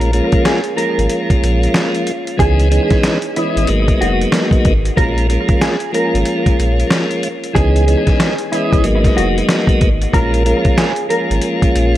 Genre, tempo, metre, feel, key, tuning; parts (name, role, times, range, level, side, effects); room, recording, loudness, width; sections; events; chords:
hip hop, boom-bap hip-hop; 93 BPM; 4/4; swing 61% on 16ths; Bb phrygian; A4 = 439 Hz
mellow electric guitar; melody; 0.0-11.6 s; Fb4 to Bb4; -21 LUFS; right 2 dB; analog chorus, tape echo
tonewheel organ; accompaniment; 0.0-12.0 s; Fb3 to Eb5; -17 LUFS; equal; slow rotary speaker, cassette tape, tape echo
sub bass with octave; bass; 0.0-12.0 s; F1 to Db2; -16 LUFS; equal
dusty soul sampler-style drum kit; drums; 0.0-11.9 s; hi-hat, kick drum, snare drum; -16 LUFS; equal
little or no reverb; echo-heavy mix, vinyl crackle; -12 LUFS; side -14 dB against mid
0.0-12.0 A section
0.0 Bbm7; 2.4 Dbm7; 3.7 Abm7; 5.0 Bbm7; 7.6 Dbm7; 8.8 Abm7; 10.1 Bbm7